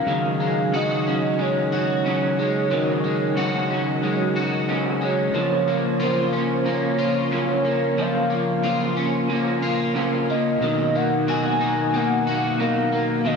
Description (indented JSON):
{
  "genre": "dream pop",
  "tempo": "91 BPM",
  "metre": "4/4",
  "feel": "straight",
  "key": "unclear",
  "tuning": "A4 = 439 Hz",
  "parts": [
    { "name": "warm velvety synth lead", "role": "melody", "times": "0.0-13.4 s", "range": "C5 to Ab5", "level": "-26 LUFS", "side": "equal", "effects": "chorus, shimmer reverb, analog delay" },
    { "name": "electric guitar through a small old amp", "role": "accompaniment", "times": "0.0-13.4 s", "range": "Gb2 to Eb4", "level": "-27 LUFS", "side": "right 6 dB", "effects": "tremolo, lush chorus, shimmer reverb" },
    { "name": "mellow tonewheel organ", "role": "sustained chords", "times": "0.0-13.4 s", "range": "Cb3 to Eb5", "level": "-26 LUFS", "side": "right 2 dB", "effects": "slow rotary speaker, shimmer reverb" },
    { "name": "electric guitar at the edge of break-up", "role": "arpeggios", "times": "0.0-13.4 s", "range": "Eb3 to Gb4", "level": "-24 LUFS", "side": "left 4 dB", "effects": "analog chorus, shimmer reverb, analog delay" },
    { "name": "celesta", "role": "texture", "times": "2.7-4.8 s", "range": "Gb4 to Db5", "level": "-37 LUFS", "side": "right 2 dB", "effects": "none" }
  ],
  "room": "wet spring reverb, RT60 1.8 s",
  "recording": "echo-heavy mix",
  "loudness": "-19 LUFS",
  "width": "side -5 dB against mid",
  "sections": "0.0-5.3 A section; 5.3-13.4 B section",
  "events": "none",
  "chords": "0.1 Ab7sus4; 5.3 Gbmaj7; 10.6 Cbmaj7"
}